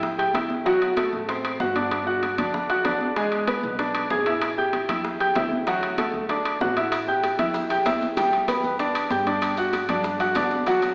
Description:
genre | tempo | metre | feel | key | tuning
latin, salsa | 192 BPM | 4/4 | straight | G major | A4 = 440 Hz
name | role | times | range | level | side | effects
bright concert grand piano | accompaniment | 0.0-10.9 s | F#3 to G#6 | -22 LUFS | equal | none
upright bass | bass | 0.0-10.9 s | G1 to A2 | -37 LUFS | equal | none
bongos | percussion | 0.0-10.8 s | none | -34 LUFS | equal | none
congas | percussion | 0.0-10.9 s | none | -33 LUFS | equal | none
timbales | percussion | 0.2-10.9 s | none | -30 LUFS | equal | none
maracas | percussion | 6.9-10.9 s | none | -42 LUFS | equal | none
room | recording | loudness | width
wet recital hall reverb, RT60 1.7 s | recorded in a church or concert hall, AM radio sound | -21 LUFS | side -37 dB against mid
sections
0.0-10.9 A section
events
none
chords
0.0 A5; 0.7 D7; 1.9 G5; 3.2 E7; 4.4 A5; 5.7 Dadd9; 6.9 A5; 8.2 Em7; 9.4 G5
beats
0.03 0.34 | 0.66 0.97 1.29 1.60 | 1.91 2.23 2.54 2.85 | 3.17 3.48 3.79 4.11 | 4.42 4.73 5.05 5.36 | 5.67 5.98 6.30 6.61 | 6.92 7.23 7.55 7.86 | 8.17 8.48 8.80 9.11 | 9.42 9.73 10.04 10.36 | 10.67

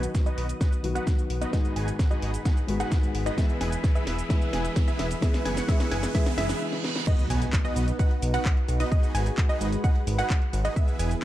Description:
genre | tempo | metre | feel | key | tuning
EDM, festival progressive house | 130 BPM | 4/4 | straight | B major | A4 = 440 Hz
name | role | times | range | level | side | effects
felt-muted upright piano | accompaniment | 0.0-7.1 s | G#2 to G#4 | -33 LUFS | left 3 dB | sidechain pumping, tape echo
lush unison pad | sustained chords | 0.0-11.2 s | E3 to D#6 | -38 LUFS | equal | chorus, sidechain pumping
wide unison pluck | arpeggios | 0.0-11.1 s | D#5 to G#5 | -35 LUFS | right 2 dB | sidechain pumping, tape echo
dense compressed supersaw | riff | 0.0-11.1 s | B3 to G#5 | -34 LUFS | right 1 dB | sidechain pumping, low-pass filter, tape echo
fat analog bass | bass | 0.0-11.1 s | E1 to B1 | -28 LUFS | equal | sidechain pumping
house drum kit | drums | 0.0-11.2 s | crash cymbal, handclaps, hi-hat, shaker, snare drum | -35 LUFS | right 1 dB | none
riser, reverse cymbal and impact | sound effects | 1.3-8.9 s | none | -38 LUFS | right 1 dB | none
electronic kick drum | drums | 0.1-10.9 s | none | -23 LUFS | equal | none
room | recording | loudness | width
light reverb | dark, warm production | -23 LUFS | side -14 dB against mid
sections
0.0-7.1 A section; 7.1-11.2 B section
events
build-up 0.0-7.1; drum fill 0.0-6.6, 6.7-7.1; filter sweep on supersaw synth 0.0-7.1; filter sweep on synth pluck 0.0-7.1; riser 1.3-6.6; reverse cymbal 6.1-7.1; stop 6.6-7.1; drop 7.1-11.2; impact 7.1-8.9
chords
0.0 B; 1.5 G#m7; 3.4 E; 5.2 F#sus4; 7.1 B; 8.9 G#m7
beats
0.15 0.61 1.07 | 1.53 1.99 2.46 2.92 | 3.38 3.84 4.30 4.76 | 5.22 5.68 6.15 6.61 | 7.07 7.53 7.99 8.46 | 8.92 9.38 9.84 10.30 | 10.76 11.22

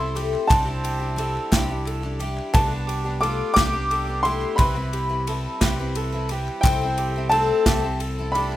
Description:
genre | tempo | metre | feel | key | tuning
indie folk with a building arrangement | 59 BPM (dotted quarters) | 6/8 | straight | C major | A4 = 440 Hz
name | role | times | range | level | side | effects
clear upright piano | melody | 0.0-8.6 s | G5 to D6 | -24 LUFS | equal | analog delay
clear trumpet | second line | 0.0-8.6 s | C4 to G4 | -34 LUFS | right 6 dB | none
picked twelve-string acoustic guitar | accompaniment | 0.0-8.6 s | C3 to B4 | -28 LUFS | left 6 dB | none
mandolin | arpeggios | 0.0-8.6 s | G4 to C5 | -32 LUFS | right 6 dB | none
picked electric bass | bass | 0.0-8.5 s | C2 | -28 LUFS | equal | none
natural country drum kit | drums | 0.2-8.5 s | kick drum, ride cymbal, snare drum | -25 LUFS | right 1 dB | none
group handclap | percussion | 0.2-8.6 s | none | -33 LUFS | left 3 dB | none
room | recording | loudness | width
little or no reverb | rough home demo mix | -20 LUFS | side -14 dB against mid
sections
0.0-8.6 A section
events
none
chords
0.0 Am/C; 0.5 Cadd9; 2.5 Gadd9/C; 4.6 Em/C; 6.6 Am/C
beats
| 0.50 1.52 | 2.54 3.56 | 4.59 5.61 | 6.63 7.66

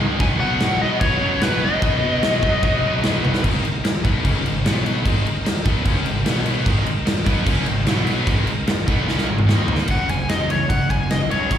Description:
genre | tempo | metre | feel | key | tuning
hard rock | 149 BPM | 4/4 | straight | G# minor | A4 = 440 Hz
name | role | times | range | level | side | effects
bright tonewheel organ | sustained chords | 0.0-9.9 s | G#3 to D#5 | -31 LUFS | right 2 dB | slow rotary speaker
scooped high-gain guitar | riff | 0.0-11.6 s | F#2 to D#4 | -26 LUFS | left 8 dB | distortion, slapback echo
scooped high-gain guitar | riff | 0.0-3.4, 6.6-11.6 s | F#2 to D#4 | -28 LUFS | right 10 dB | distortion, slapback echo
scooped high-gain guitar | riff | 0.0-9.9 s | G#2 to D#4 | -28 LUFS | right 2 dB | distortion
fuzz picked electric bass | bass | 0.0-11.6 s | F#1 to B2 | -24 LUFS | equal | overdrive
biting lead guitar | melody | 0.2-3.0, 9.9-11.6 s | B4 to G#5 | -23 LUFS | left 3 dB | overdrive, slapback echo, analog delay
big rock drum kit | drums | 0.2-11.6 s | crash cymbal, kick drum, ride cymbal, snare drum, toms | -21 LUFS | equal | none
room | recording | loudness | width
little or no reverb | live gig heard through the venue's PA, recital hall reverb | -17 LUFS | side -10 dB against mid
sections
0.0-3.4 A section; 3.4-9.9 B section; 9.9-11.6 C section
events
drum fill 3.2, 9.1-9.9; lead electric guitar solo 9.9-11.6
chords
0.2 B; 3.4 G#m; 4.6 B5; 5.1 G#m; 6.3 B5; 6.7 G#m; 7.9 B5; 8.3 G#m; 9.5 D#5; 9.9 F#5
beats
| 0.20 0.61 1.01 1.42 | 1.82 2.23 2.63 3.03 | 3.44 3.84 4.25 4.65 | 5.05 5.45 5.86 6.26 | 6.66 7.06 7.47 7.87 | 8.27 8.67 9.08 9.48 | 9.88 10.29 10.69 11.10 | 11.50

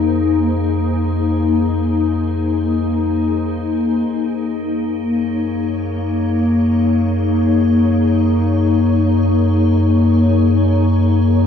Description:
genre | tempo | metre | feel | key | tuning
ambient | free time | none | none | Eb dorian | A4 = 441 Hz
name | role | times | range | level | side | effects
glassy FM pad | sustained chords | 0.0-11.5 s | Bb3 to Db5 | -16 LUFS | left 3 dB | ensemble chorus, built-in reverb
warm sub bass | bass | 0.0-11.5 s | F2 to Gb2 | -18 LUFS | equal | none
room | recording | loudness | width
wet huge ambient reverb, RT60 8.1 s | dreamy mix soaked in reverb, cassette tape, studio reverb | -14 LUFS | side -7 dB against mid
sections
0.0-11.5 A section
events
fade-in on sub bass 0.0-11.5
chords
0.0 Ab69/F; 4.1 Ebm7/Gb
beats
free time

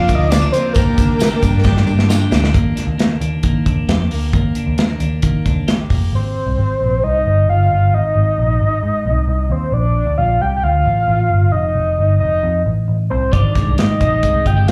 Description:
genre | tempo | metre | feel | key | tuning
jangly indie pop | 133 BPM | 4/4 | straight | unclear | A4 = 440 Hz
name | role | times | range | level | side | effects
soft octave-layered synth lead | melody | 0.0-2.1, 6.1-14.7 s | Bb4 to G5 | -20 LUFS | equal | chorus, slapback echo
picked twelve-string acoustic guitar | accompaniment | 0.0-2.6 s | Eb3 to G4 | -27 LUFS | equal | slapback echo
rich studio string section | sustained chords | 0.0-2.5 s | Bb4 to D6 | -34 LUFS | equal | none
twelve-string electric guitar | arpeggios | 0.0-6.7, 13.3-14.7 s | Eb3 to G4 | -26 LUFS | equal | slapback echo
vintage muted picked electric bass | bass | 0.0-14.7 s | F1 to Eb3 | -19 LUFS | equal | none
modern studio drum kit | drums | 0.1-6.0, 13.3-14.7 s | hi-hat, kick drum, snare drum | -20 LUFS | equal | none
tambourine | percussion | 0.1-2.4 s | none | -35 LUFS | equal | none
room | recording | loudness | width
moderate club reverb, RT60 0.8 s | live gig heard through the venue's PA, club ambience | -16 LUFS | mono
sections
0.0-2.5 A section; 2.5-6.1 B section; 6.1-14.7 C section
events
drum fill 1.6-2.5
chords
0.0 Bb; 0.8 Ebmaj7; 6.1 Abmaj7; 9.7 Bbmaj7; 11.5 F7; 13.3 Abmaj7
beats
0.31 | 0.76 1.20 1.65 2.10 | 2.54 2.99 3.44 3.89 | 4.34 4.79 5.24 5.68 | 6.13 6.58 7.03 7.48 | 7.93 8.38 8.83 9.28 | 9.73 10.18 10.63 11.08 | 11.53 11.98 12.43 12.88 | 13.33 13.78 14.23 14.68

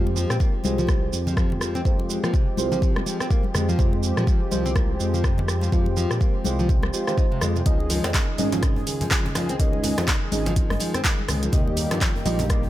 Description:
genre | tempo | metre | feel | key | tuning
afro house | 124 BPM | 4/4 | swing 58% on 16ths | F minor | A4 = 438 Hz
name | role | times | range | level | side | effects
warm analog pad | sustained chords | 0.0-12.7 s | Eb3 to Ab4 | -32 LUFS | equal | chorus, sidechain pumping
nylon-string guitar | arpeggios | 0.0-12.6 s | C3 to Eb4 | -29 LUFS | left 1 dB | sidechain pumping, digital delay
deep mellow chord stab | stabs | 0.0-12.7 s | Ab3 to Eb5 | -30 LUFS | right 2 dB | chorus, phaser, sidechain pumping, digital delay
smooth synth bass | bass | 0.0-12.7 s | Ab1 to Bb2 | -26 LUFS | equal | sidechain pumping
congas | percussion | 0.1-12.6 s | none | -31 LUFS | left 2 dB | none
deep house drum kit | drums | 0.2-12.6 s | handclaps, hi-hat, rim click, shaker | -28 LUFS | equal | none
electronic kick drum | drums | 0.4-12.6 s | none | -22 LUFS | equal | none
djembe | percussion | 7.9-12.7 s | none | -34 LUFS | right 1 dB | none
room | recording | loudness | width
digital ambience | none | -20 LUFS | side -14 dB against mid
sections
0.0-12.7 A section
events
none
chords
0.0 Fmadd9; 7.7 Dbsus2; 11.5 Eb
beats
0.40 0.89 1.37 | 1.85 2.34 2.82 3.31 | 3.79 4.27 4.76 5.24 | 5.73 6.21 6.69 7.18 | 7.66 8.14 8.63 9.11 | 9.60 10.08 10.56 11.05 | 11.53 12.02 12.50

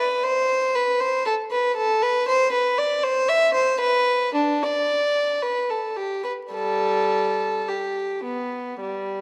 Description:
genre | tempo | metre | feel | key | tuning
classical, baroque-style suite movement for unaccompanied violin | 52-60 BPM | 4/4 | rubato | G major | A4 = 440 Hz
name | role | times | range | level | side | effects
warm violin | solo | 0.0-9.2 s | G3 to E5 | -23 LUFS | equal | none
room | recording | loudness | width
moderate recital hall reverb, RT60 1.8 s | dark, warm production, vinyl crackle | -23 LUFS | mono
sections
0.0-9.2 A section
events
none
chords
none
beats
0.24 1.25 | 2.26 3.27 4.35 5.43 | 6.53 7.67 8.81

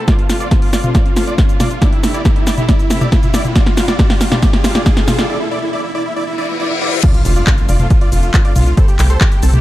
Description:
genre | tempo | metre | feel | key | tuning
uplifting trance | 138 BPM | 4/4 | straight | unclear | A4 = 438 Hz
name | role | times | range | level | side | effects
big supersaw lead | melody | 0.0-9.6 s | C4 to D5 | -21 LUFS | right 1 dB | sidechain pumping, low-pass filter, dub echo
riser, reverse cymbal and impact | sound effects | 0.0-8.8 s | none | -24 LUFS | left 1 dB | none
bright symphonic string section | sustained chords | 0.1-9.6 s | C3 to G4 | -27 LUFS | left 1 dB | sidechain pumping
electronic kick drum | drums | 0.1-9.3 s | none | -13 LUFS | equal | none
house drum kit | drums | 0.1-9.6 s | crash cymbal, handclaps, hi-hat, shaker, snare drum, toms | -18 LUFS | equal | none
tight sequencer bass | bass | 7.3-9.6 s | F1 to C2 | -13 LUFS | equal | sidechain pumping
room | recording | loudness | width
little or no reverb | dark, warm production | -11 LUFS | side -15 dB against mid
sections
0.0-7.0 A section; 7.0-9.6 B section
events
build-up 0.0-7.0; drum fill 0.0-5.3; riser 0.0-5.3; break 5.3-7.0; reverse cymbal 6.3-7.0; drop 7.0-9.6; impact 7.0-8.8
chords
0.1 F6; 1.8 C6; 3.6 Gsus4; 5.3 N.C.; 7.0 F6; 8.8 C6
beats
| 0.08 0.51 0.95 1.38 | 1.82 2.25 2.69 3.12 | 3.56 3.99 4.42 4.86 | 5.29 5.73 6.16 6.60 | 7.03 7.47 7.90 8.34 | 8.77 9.21

